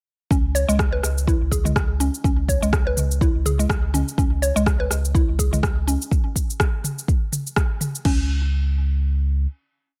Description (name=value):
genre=afro house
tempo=124 BPM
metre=4/4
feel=swing 56% on 16ths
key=C# minor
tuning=A4 = 440 Hz
part: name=mallet-like synth pluck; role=arpeggios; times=0.3-8.3 s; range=G#3 to C#5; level=-28 LUFS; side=equal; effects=chorus, sidechain pumping, tape echo
part: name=warm sub bass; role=bass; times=0.3-9.5 s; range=C#2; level=-24 LUFS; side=equal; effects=sidechain pumping
part: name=afro-pop drum kit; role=drums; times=0.3-8.2 s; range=crash cymbal, rim click, shaker, toms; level=-28 LUFS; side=equal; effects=none
part: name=electronic kick drum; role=drums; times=0.3-8.2 s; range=none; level=-23 LUFS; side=equal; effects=none
room=digital ambience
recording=none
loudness=-21 LUFS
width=mono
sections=0.3-8.1 drop; 8.1-10.0 final note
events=drop 0.3-8.1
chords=0.3 C#5; 8.1 N.C.